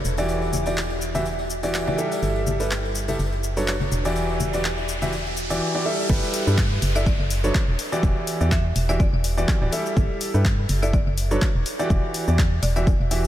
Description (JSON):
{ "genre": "piano house", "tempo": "124 BPM", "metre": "4/4", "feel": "swing 55% on 16ths", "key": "E minor", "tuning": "A4 = 441 Hz", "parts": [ { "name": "organ-like FM bass", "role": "bass", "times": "0.0-13.3 s", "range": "D1 to G2", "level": "-24 LUFS", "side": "equal", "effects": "sidechain pumping" }, { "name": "punchy analog drum machine", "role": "drums", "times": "0.0-13.3 s", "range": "cabasa, crash cymbal, handclaps, hi-hat", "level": "-31 LUFS", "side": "left 2 dB", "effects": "overdrive, studio reverb" }, { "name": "clear concert grand piano", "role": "riff", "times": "0.2-13.2 s", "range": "E3 to E5", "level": "-25 LUFS", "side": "equal", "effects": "sidechain pumping, ping-pong delay" }, { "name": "tambourine and congas", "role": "percussion", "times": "0.2-5.6 s", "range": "none", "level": "-33 LUFS", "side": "left 4 dB", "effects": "none" }, { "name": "riser and downlifter", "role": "sound effects", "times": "3.4-10.0 s", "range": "none", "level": "-33 LUFS", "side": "right 1 dB", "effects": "none" }, { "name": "electronic kick drum", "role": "drums", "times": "6.1-13.0 s", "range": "none", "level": "-21 LUFS", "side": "equal", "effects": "overdrive, studio reverb" }, { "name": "buzzing marimba with hard mallets", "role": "melody", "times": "7.0-12.8 s", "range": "D5 to E5", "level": "-35 LUFS", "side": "left 2 dB", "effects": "ping-pong delay" } ], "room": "moderate huge ambient reverb, RT60 4.2 s", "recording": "dreamy mix soaked in reverb", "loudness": "-20 LUFS", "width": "side -12 dB against mid", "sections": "0.0-6.1 A section; 6.1-13.3 B section", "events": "riser 3.4-6.1; drop 6.1-13.3", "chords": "0.0 Em9; 2.2 Gsus2; 3.2 Bm9/F#; 3.9 Em9; 6.1 G69; 7.1 Bm9/F#; 7.8 Em9; 10.0 Gsus2; 10.9 Bm9/F#; 11.7 Em9", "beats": "| 0.29 0.77 1.26 1.74 | 2.22 2.71 3.19 3.68 | 4.16 4.64 5.13 5.61 | 6.09 6.58 7.06 7.55 | 8.03 8.51 9.00 9.48 | 9.97 10.45 10.93 11.42 | 11.90 12.38 12.87" }